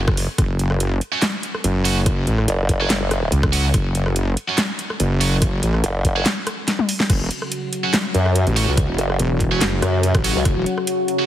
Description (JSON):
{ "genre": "heavy wobble dubstep", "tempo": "143 BPM", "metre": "4/4", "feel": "swing 54% on 16ths, half-time", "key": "F# minor", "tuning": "A4 = 440 Hz", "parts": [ { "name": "wobble bass", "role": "bass", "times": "0.0-10.6 s", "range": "E1 to C#2", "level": "-19 LUFS", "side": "equal", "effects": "chorus, overdrive" }, { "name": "dubstep drum kit", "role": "drums", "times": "0.1-11.2 s", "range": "crash cymbal, handclaps, hi-hat, rim click, snare drum, toms", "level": "-23 LUFS", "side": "equal", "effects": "studio reverb" }, { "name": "electronic kick drum", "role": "drums", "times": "0.1-10.5 s", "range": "none", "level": "-19 LUFS", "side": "equal", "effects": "overdrive, studio reverb" }, { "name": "high-gain distorted guitar", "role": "stabs", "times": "1.1-11.3 s", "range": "F#3 to F#4", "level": "-26 LUFS", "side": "right 4 dB", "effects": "distortion, ping-pong delay" }, { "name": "formant-sweep wobble bass", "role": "bass", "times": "2.5-3.3, 5.8-10.4 s", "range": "F#1 to F#2", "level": "-18 LUFS", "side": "equal", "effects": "chorus, overdrive" }, { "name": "supersaw pad", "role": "sustained chords", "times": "7.1-11.3 s", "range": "C#3 to F#4", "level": "-24 LUFS", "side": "left 2 dB", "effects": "phaser, sidechain pumping, low-pass filter" } ], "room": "light reverb", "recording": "heavily compressed radio sound, multiband compression", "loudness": "-17 LUFS", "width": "side -12 dB against mid", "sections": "0.0-7.1 A section; 7.1-11.3 A section", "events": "drop 0.0-7.1, 7.1-11.3; drum fill 6.7-7.1", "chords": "0.0 F#5" }